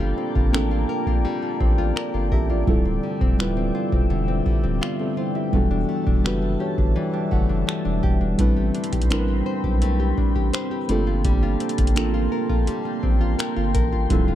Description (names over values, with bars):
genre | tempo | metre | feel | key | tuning
contemporary R&B | 84 BPM | 4/4 | straight | unclear | A4 = 437 Hz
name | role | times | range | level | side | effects
muted felt-like synth keys | accompaniment | 0.0-14.3 s | G3 to A5 | -25 LUFS | right 2 dB | chorus
glassy FM pad | sustained chords | 0.0-14.3 s | G3 to C6 | -29 LUFS | left 2 dB | ensemble chorus, built-in reverb
nylon-string guitar | arpeggios | 0.0-14.3 s | D3 to C5 | -29 LUFS | left 6 dB | ping-pong delay
saturated sub bass | bass | 0.0-14.3 s | D1 to B1 | -24 LUFS | equal | none
booming analog drum machine | drums | 0.4-14.3 s | finger snaps, hi-hat, kick drum | -21 LUFS | equal | none
room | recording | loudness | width
little or no reverb | dark, warm production | -19 LUFS | side -12 dB against mid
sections
0.0-14.3 A section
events
synth keys fill 6.2-8.4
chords
0.0 Gm11; 2.7 Dm11; 5.5 Em11; 8.4 Am11; 10.9 Gm11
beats
0.53 1.25 1.96 | 2.67 3.39 4.10 4.82 | 5.53 6.25 6.96 7.67 | 8.39 9.10 9.82 10.53 | 11.24 11.96 12.67 13.39 | 14.10